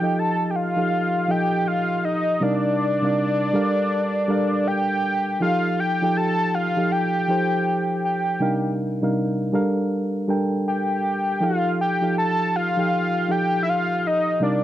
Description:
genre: R&B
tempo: 80 BPM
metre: 4/4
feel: swing 63% on 16ths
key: unclear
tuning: A4 = 443 Hz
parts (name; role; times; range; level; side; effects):
- fat analog lead; melody; 0.0-14.6 s; D5 to A5; -22 LUFS; left 1 dB; chorus, slapback echo
- mellow reed electric piano; accompaniment; 0.0-14.6 s; C3 to G5; -22 LUFS; right 1 dB; none
room: light reverb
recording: none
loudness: -20 LUFS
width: side -12 dB against mid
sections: 0.0-14.6 A section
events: none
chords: 0.0 F7; 2.4 Cm11; 3.5 Gm7; 5.4 F7; 8.4 Cm11; 9.5 Gm7; 11.4 F7

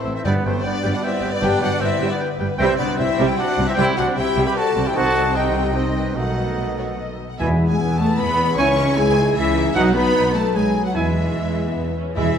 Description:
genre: cinematic, heroic adventure film score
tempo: 152 BPM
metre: 3/4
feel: straight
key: E major from 7.4 s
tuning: A4 = 441 Hz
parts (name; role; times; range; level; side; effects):
- warm symphonic violin section; melody; 0.0-12.4 s; C5 to C#6; -29 LUFS; left 4 dB; none
- bright oboe; second line; 0.0-7.2 s; Eb5 to G5; -32 LUFS; right 1 dB; none
- concert flute; second line; 0.0-12.4 s; C5 to C#6; -28 LUFS; left 1 dB; none
- warm symphonic violin section; second line; 0.0-12.4 s; A4 to C#6; -32 LUFS; equal; none
- warm symphonic viola section; accompaniment; 0.0-12.4 s; Eb3 to G#4; -28 LUFS; right 2 dB; none
- dark French horn section; sustained chords; 0.0-12.4 s; C4 to C#5; -24 LUFS; left 4 dB; none
- warm trombone section; sustained chords; 0.0-12.4 s; G#2 to E4; -29 LUFS; right 5 dB; none
- concert harp; arpeggios; 0.0-12.4 s; G2 to B5; -30 LUFS; left 7 dB; none
- clear clarinet; second line; 0.1-11.9 s; F#3 to C5; -31 LUFS; equal; none
- dark symphonic cello section; bass; 0.1-12.4 s; G2 to C#4; -26 LUFS; right 2 dB; none
- rich studio double bass section; bass; 0.1-12.3 s; G1 to E2; -24 LUFS; right 2 dB; none
- mellow trumpet; stabs; 0.2-12.4 s; A3 to G#5; -26 LUFS; right 2 dB; none
- timpani; percussion; 0.2-0.8, 7.4-12.4 s; E2 to B2; -30 LUFS; left 1 dB; none
room: wet scoring stage reverb, RT60 1.6 s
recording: none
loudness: -17 LUFS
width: side -8 dB against mid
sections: 0.0-7.4 A section; 7.4-12.4 B section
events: none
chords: 0.3 G; 2.6 C; 5.0 Cm; 6.2 B7; 7.4 E; 8.6 C#madd9; 9.8 B; 10.9 E

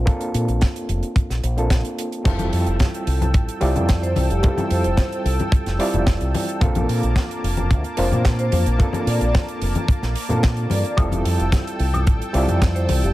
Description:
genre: nu-disco, nu disco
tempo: 110 BPM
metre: 4/4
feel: straight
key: F major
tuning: A4 = 440 Hz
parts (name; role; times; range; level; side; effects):
- overdriven reed electric piano; accompaniment; 0.0-13.1 s; G3 to D5; -25 LUFS; right 1 dB; medium tremolo, sidechain pumping, tape echo
- fingered electric bass with an envelope filter; bass; 0.0-13.1 s; F1 to Bb2; -21 LUFS; equal; none
- kick drum; drums; 0.1-12.7 s; none; -17 LUFS; equal; small room reverb
- tight funk drum kit; drums; 0.1-13.1 s; crash cymbal, hi-hat, snare drum, woodblock; -29 LUFS; right 2 dB; small room reverb
- lush unison pad; sustained chords; 2.3-13.1 s; Bb3 to E6; -30 LUFS; equal; chorus, sidechain pumping
- congas; percussion; 2.3-13.0 s; none; -27 LUFS; left 3 dB; none
- vibraphone with medium mallets; melody; 4.0-13.1 s; G4 to D5; -29 LUFS; equal; dub echo
room: studio ambience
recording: none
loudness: -18 LUFS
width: side -16 dB against mid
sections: 0.0-13.1 A section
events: none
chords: 0.0 Bbmaj7; 2.3 Fmaj9; 6.6 Bbmaj7; 11.0 Fmaj9

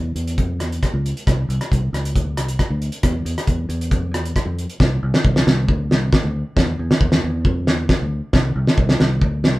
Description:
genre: highlife guitar band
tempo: 136 BPM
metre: 4/4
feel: straight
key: C major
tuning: A4 = 440 Hz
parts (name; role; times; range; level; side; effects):
- fingered electric bass; bass; 0.0-9.6 s; C2 to F2; -22 LUFS; equal; none
- warm soul drum kit; drums; 0.2-9.5 s; hi-hat, kick drum, rim click, snare drum; -18 LUFS; equal; none
room: moderate studio ambience, RT60 0.5 s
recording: band playing live in one room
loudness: -17 LUFS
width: side -18 dB against mid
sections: 0.0-4.8 A section; 4.8-9.6 B section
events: none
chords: none

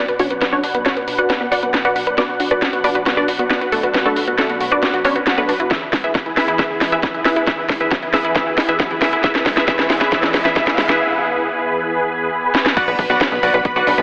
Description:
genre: uplifting trance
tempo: 136 BPM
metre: 4/4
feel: straight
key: unclear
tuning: A4 = 440 Hz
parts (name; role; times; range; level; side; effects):
- wide unison pluck; melody; 0.0-14.0 s; A3 to F#5; -18 LUFS; equal; phaser, sidechain pumping, digital delay
- analog string pad; sustained chords; 0.0-14.0 s; E2 to F#5; -23 LUFS; equal; ensemble chorus, sidechain pumping
- wide unison pluck; arpeggios; 0.0-14.0 s; E2 to B4; -25 LUFS; equal; sidechain pumping, digital delay
- house drum kit; drums; 0.1-14.0 s; crash cymbal, hi-hat, snare drum; -19 LUFS; equal; overdrive, sidechain pumping on hats, sidechain pumping on cymbals
- electronic kick drum; drums; 5.7-13.7 s; none; -25 LUFS; equal; overdrive
- riser; sound effects; 8.4-11.0 s; none; -28 LUFS; equal; none
- supersaw stab; second line; 12.8-14.0 s; B5 to F#6; -21 LUFS; equal; sidechain pumping
- tight sequencer bass; bass; 12.9-14.0 s; B1; -21 LUFS; equal; sidechain pumping
room: wet lush hall reverb, RT60 2.2 s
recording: heavily compressed radio sound, telephone sound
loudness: -14 LUFS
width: side -32 dB against mid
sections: 0.0-12.8 A section; 12.8-14.0 B section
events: build-up 0.0-12.8; drum fill 0.0-11.0, 12.5; filter sweep on synth pluck 0.0-12.8; filter sweep on synth arpeggio sound 0.0-12.8; break 11.0-12.8; drop 12.8-14.0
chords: 0.0 Bm; 5.7 E; 12.8 Bm

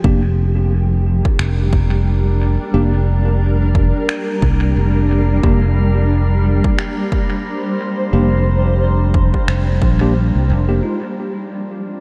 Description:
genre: ambient dub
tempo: 89 BPM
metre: 4/4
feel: swing 58% on 16ths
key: unclear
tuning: A4 = 439 Hz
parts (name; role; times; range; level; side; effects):
- granular cloud pad; sustained chords; 0.0-12.0 s; F3 to C5; -24 LUFS; equal; built-in reverb
- tine electric piano; stabs; 0.0-11.0 s; Ab3 to G4; -27 LUFS; equal; medium tremolo, vintage 12-bit sampler grit, dub echo
- fingered electric bass; bass; 0.0-10.8 s; F1 to C2; -17 LUFS; equal; none
- electronic kick drum; drums; 0.0-10.0 s; none; -20 LUFS; equal; overdrive, studio reverb
- drifting glass-harmonics texture; texture; 0.8-12.0 s; Bb3 to D5; -33 LUFS; equal; chorus, built-in reverb
- electronic finger snaps; drums; 1.4-9.6 s; none; -32 LUFS; equal; studio reverb, dub echo
room: moderate huge ambient reverb, RT60 7.4 s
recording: dreamy mix soaked in reverb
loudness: -16 LUFS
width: mono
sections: 0.0-10.8 A section; 10.8-12.0 B section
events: none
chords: 0.0 Gm/F; 10.8 Fm7

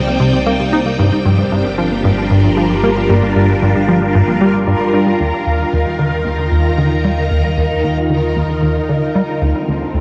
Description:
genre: ambient, sequencer-driven space music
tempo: 114 BPM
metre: 4/4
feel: straight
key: G minor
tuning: A4 = 440 Hz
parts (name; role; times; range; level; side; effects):
- phased string machine; sustained chords; 0.0-10.0 s; C3 to Bb5; -19 LUFS; equal; ensemble chorus, phaser
- thumb-piano-like synth pluck; arpeggios; 0.0-5.2 s; G2 to D4; -24 LUFS; equal; chorus, analog delay
- analog drone; bass; 0.0-10.0 s; G1 to Eb2; -25 LUFS; equal; chorus
- plucky analog bass; riff; 0.2-10.0 s; D2 to Eb4; -18 LUFS; equal; analog chorus, analog delay
room: wet huge ambient reverb, RT60 7.1 s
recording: worn, warbling old tape, cassette tape, warbly pitch drift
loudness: -15 LUFS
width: mono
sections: 0.0-5.2 A section; 5.2-10.0 B section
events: none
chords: 0.0 Cmadd9; 1.0 Gm7; 5.2 Ebsus2; 9.4 Dm7

